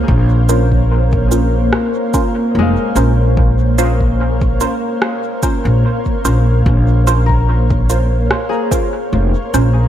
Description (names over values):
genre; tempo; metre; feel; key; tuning
ambient dub; 73 BPM; 4/4; swing 54% on 16ths; Bb minor; A4 = 440 Hz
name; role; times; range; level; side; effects
granular cloud pad; sustained chords; 0.0-9.9 s; Bb3 to F5; -19 LUFS; equal; built-in reverb
concert harp; arpeggios; 0.0-9.9 s; Ab3 to F5; -25 LUFS; left 5 dB; dub echo
upright bass; bass; 0.0-9.9 s; F1 to Bb1; -13 LUFS; equal; none
electronic kick drum; drums; 0.1-8.9 s; none; -17 LUFS; equal; none
filtered dub chord stab; stabs; 0.5-9.7 s; Db4 to C5; -22 LUFS; right 3 dB; phaser, wide subtle chorus, dub echo
electronic cabasa and rim click; drums; 0.5-9.7 s; none; -21 LUFS; right 1 dB; dub echo
room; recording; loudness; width
light reverb, digital ambience; none; -12 LUFS; side -11 dB against mid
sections
0.0-9.9 A section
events
none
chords
0.0 Bbmadd9